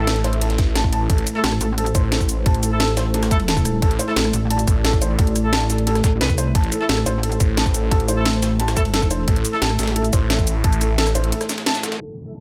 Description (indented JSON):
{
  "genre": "dark technical drum and bass",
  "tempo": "176 BPM",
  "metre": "4/4",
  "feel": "straight",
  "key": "A minor",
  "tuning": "A4 = 440 Hz",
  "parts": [
    { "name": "dark analog pad", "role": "sustained chords", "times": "0.0-12.4 s", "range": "A3 to E5", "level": "-31 LUFS", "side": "equal", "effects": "chorus, sidechain pumping" },
    { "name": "warm brass ensemble", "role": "stabs", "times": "0.0-9.6, 12.3 s", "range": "A3-24c to A4", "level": "-30 LUFS", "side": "equal", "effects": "low-pass filter, delay" },
    { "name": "phased detuned saw bass", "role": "bass", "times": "0.0-11.3 s", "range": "A1", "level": "-24 LUFS", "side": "equal", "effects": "phaser, tube saturation" },
    { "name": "felt-muted upright piano", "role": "arpeggios", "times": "0.1-12.4 s", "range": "A4 to A5", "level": "-28 LUFS", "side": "equal", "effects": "sidechain pumping, delay" },
    { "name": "breakbeat sampler-style drum kit", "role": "drums", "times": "0.1-12.0 s", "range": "ride cymbal, snare drum", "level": "-35 LUFS", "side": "equal", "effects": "none" },
    { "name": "drum and bass drum kit", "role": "drums", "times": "0.1-11.9 s", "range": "hi-hat, rim click, shaker, snare drum", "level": "-26 LUFS", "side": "equal", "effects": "overdrive" },
    { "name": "electronic kick drum", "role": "drums", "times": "0.6-10.7 s", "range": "none", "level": "-20 LUFS", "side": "equal", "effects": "overdrive" },
    { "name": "pulsing pluck wobble bass", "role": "bass", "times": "1.4-10.1 s", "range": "A1 to C2", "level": "-23 LUFS", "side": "equal", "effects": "chorus" },
    { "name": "downlifter", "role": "sound effects", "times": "12.0-12.4 s", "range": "none", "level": "-38 LUFS", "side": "equal", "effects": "none" }
  ],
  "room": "little or no reverb",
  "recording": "low-pass filter",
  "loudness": "-19 LUFS",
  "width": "mono",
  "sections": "0.0-12.0 A section",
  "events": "break 11.3-12.0; band accent 11.7",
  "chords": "0.0 Amadd9"
}